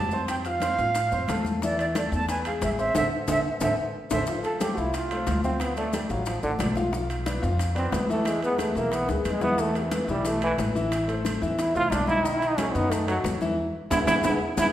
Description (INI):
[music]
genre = latin, salsa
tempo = 181 BPM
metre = 4/4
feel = straight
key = unclear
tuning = A4 = 440 Hz
[part]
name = bright concert flute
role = melody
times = 0.0-4.2 s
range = D5 to A5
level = -27 LUFS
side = right 3 dB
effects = none
[part]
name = clear concert grand piano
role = accompaniment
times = 0.0-14.7 s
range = D#3 to F6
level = -29 LUFS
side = left 2 dB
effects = none
[part]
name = upright bass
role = bass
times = 0.0-14.7 s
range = A1 to A2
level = -31 LUFS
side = equal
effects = none
[part]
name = maracas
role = percussion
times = 0.1-14.7 s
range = none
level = -41 LUFS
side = left 6 dB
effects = none
[part]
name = bongos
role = percussion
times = 0.3-14.7 s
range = none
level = -35 LUFS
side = left 3 dB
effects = none
[part]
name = congas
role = percussion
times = 0.3-14.7 s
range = none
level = -34 LUFS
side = left 1 dB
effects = none
[part]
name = timbales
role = percussion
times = 0.3-14.7 s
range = none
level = -34 LUFS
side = right 3 dB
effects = none
[part]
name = clear trombone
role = melody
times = 4.4-14.7 s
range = C3 to A4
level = -26 LUFS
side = right 1 dB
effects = none
[sound]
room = wet recital hall reverb, RT60 1.4 s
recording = recorded in a church or concert hall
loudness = -23 LUFS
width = side -12 dB against mid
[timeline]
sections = 0.0-4.3 A section; 4.3-14.7 B section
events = band accent 2.9-4.3, 13.6-14.7; drum fill 3.4-4.3, 9.1-9.6, 13.9-14.7; trombone solo 4.3-14.7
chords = 0.3 F; 1.6 Esus4; 2.3 E; 2.9 Am; 4.3 F; 5.6 Dm; 6.9 Bdim; 8.3 E; 9.6 Esus4; 10.9 Am; 12.2 B7; 13.6 E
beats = | 0.28 0.61 0.95 1.28 | 1.61 1.95 2.28 2.61 | 2.95 3.28 3.61 3.94 | 4.28 4.61 4.94 5.27 | 5.61 5.94 6.27 6.60 | 6.94 7.27 7.60 7.93 | 8.27 8.60 8.93 9.26 | 9.59 9.93 10.26 10.59 | 10.92 11.25 11.59 11.92 | 12.25 12.58 12.91 13.25 | 13.58 13.91 14.24 14.58